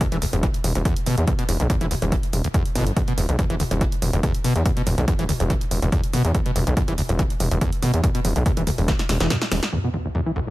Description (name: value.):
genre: driving peak-time techno.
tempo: 142 BPM.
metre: 4/4.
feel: straight.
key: E minor.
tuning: A4 = 441 Hz.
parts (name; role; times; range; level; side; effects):
overdriven acid bass; riff; 0.0-10.5 s; D2 to E3; -25 LUFS; equal; distortion, analog chorus, sidechain pumping, digital delay.
electronic kick drum; drums; 0.0-9.0 s; none; -23 LUFS; equal; none.
punchy analog drum machine; drums; 0.0-10.4 s; hi-hat, snare drum, toms; -28 LUFS; equal; none.
gritty driven synth bass; bass; 0.1-9.6 s; E1 to E2; -22 LUFS; equal; tube saturation, sidechain pumping.
sub drop; sound effects; 9.7-10.5 s; none; -31 LUFS; equal; none.
room: little or no reverb.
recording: none.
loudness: -19 LUFS.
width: side -17 dB against mid.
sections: 0.0-9.7 A section.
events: drum fill 8.9-9.7; kick drops out 9.3-9.7; impact 9.7-10.5.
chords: 0.0 N.C.; 9.7 E5.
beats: 0.01 0.43 0.85 | 1.28 1.70 2.12 2.54 | 2.97 3.39 3.81 4.23 | 4.66 5.08 5.50 5.92 | 6.35 6.77 7.19 7.61 | 8.04 8.46 8.88 9.30 | 9.73 10.15.